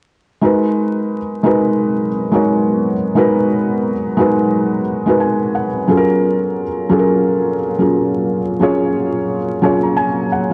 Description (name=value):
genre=hip hop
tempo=88 BPM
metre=4/4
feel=swing 59% on 16ths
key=G# dorian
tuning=A4 = 444 Hz
part: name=felt-muted upright piano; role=accompaniment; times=0.4-10.5 s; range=F#3 to A#5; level=-16 LUFS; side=equal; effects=cassette tape
part: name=deep dark ambient pad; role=sustained chords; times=1.4-10.5 s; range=F#3 to A#5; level=-27 LUFS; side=equal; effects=chorus, built-in reverb
room=moderate plate reverb, RT60 2.5 s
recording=dark, warm production, vinyl crackle, nothing above 10.4 kHz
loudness=-16 LUFS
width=mono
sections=0.4-10.5 A section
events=felt piano fill 4.9-5.9, 9.3-10.5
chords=0.4 G#m7; 5.9 F#maj7